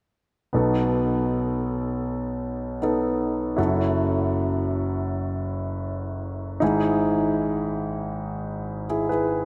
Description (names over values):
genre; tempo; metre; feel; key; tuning
pop; 79 BPM; 4/4; straight; unclear; A4 = 440 Hz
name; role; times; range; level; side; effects
warm concert grand piano; accompaniment; 0.5-9.4 s; F#1 to B4; -25 LUFS; equal; none
room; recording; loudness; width
wet lush hall reverb, RT60 3.3 s; dreamy mix soaked in reverb; -25 LUFS; mono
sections
0.5-9.4 A section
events
none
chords
0.5 B7; 3.6 F#m7; 6.6 Emaj7/G#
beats
| 0.54 1.30 2.06 2.82 | 3.58 4.34 5.10 5.86 | 6.62 7.38 8.14 8.90